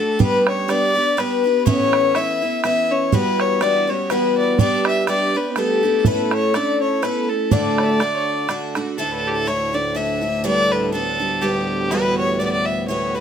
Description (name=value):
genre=celtic folk, Celtic waltz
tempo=123 BPM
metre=3/4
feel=swing 54% on 8ths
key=D major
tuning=A4 = 437 Hz
part: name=warm fiddle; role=melody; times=0.0-13.2 s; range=G4 to E5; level=-21 LUFS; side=left 1 dB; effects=none
part: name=soft octave-layered synth lead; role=second line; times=0.0-8.5 s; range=A4 to E5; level=-21 LUFS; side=left 6 dB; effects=chorus, phaser
part: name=picked twelve-string acoustic guitar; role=accompaniment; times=0.0-13.2 s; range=D2 to A4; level=-22 LUFS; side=right 3 dB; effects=none
part: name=bodhran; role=percussion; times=0.2-8.9 s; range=none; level=-20 LUFS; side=right 5 dB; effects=none
part: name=pedal harmonium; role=drone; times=9.0-13.2 s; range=D2 to A2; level=-28 LUFS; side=left 4 dB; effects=none
room=moderate studio reverb, RT60 0.5 s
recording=close, detailed microphones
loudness=-17 LUFS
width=side -8 dB against mid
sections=0.0-9.0 A section; 9.0-13.2 B section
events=none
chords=0.2 G; 1.7 Aadd9; 3.1 Emadd9; 4.6 G; 6.1 A; 7.5 D; 9.0 Dsus2; 10.4 Gadd9/D; 11.9 Emadd9